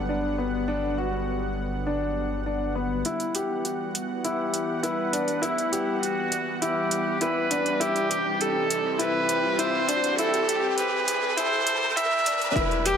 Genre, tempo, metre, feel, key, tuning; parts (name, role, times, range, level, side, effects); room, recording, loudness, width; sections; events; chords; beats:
piano and strings electronica; 101 BPM; 4/4; straight; E minor; A4 = 441 Hz
lush unison pad; sustained chords; 0.0-13.0 s; C3 to F#5; -31 LUFS; equal; chorus, sidechain pumping
warm sub bass; bass; 0.0-3.0, 12.6-13.0 s; E1 to G1; -33 LUFS; equal; sidechain pumping
warm concert grand piano; riff; 0.1-13.0 s; B3 to G4; -28 LUFS; left 2 dB; digital delay
electronic hi-hat; drums; 3.0-13.0 s; -29 LUFS; right 1 dB; overdrive
rich viola; melody; 3.1-13.0 s; E4 to E5; -26 LUFS; right 1 dB; low-pass filter, digital delay
riser; sound effects; 4.7-12.6 s; -33 LUFS; right 1 dB
electronic kick drum; drums; 12.6-12.7 s; -29 LUFS; right 1 dB; overdrive
wet concert hall reverb, RT60 2.1 s; high-pass filter; -23 LUFS; side -7 dB against mid
0.0-3.1 A section; 3.1-12.6 B section
build-up 3.1-12.6; filter sweep on viola 3.1-12.6; filter sweep 3.1-12.6; riser 4.7-12.6
0.0 Gmaj7; 3.1 Emadd9; 7.8 Cmaj7
0.08 | 0.68 1.27 1.86 2.46 | 3.05 3.65 4.24 4.83 | 5.43 6.02 6.62 7.21 | 7.80 8.40 8.99 9.59 | 10.18 10.78 11.37 11.96 | 12.56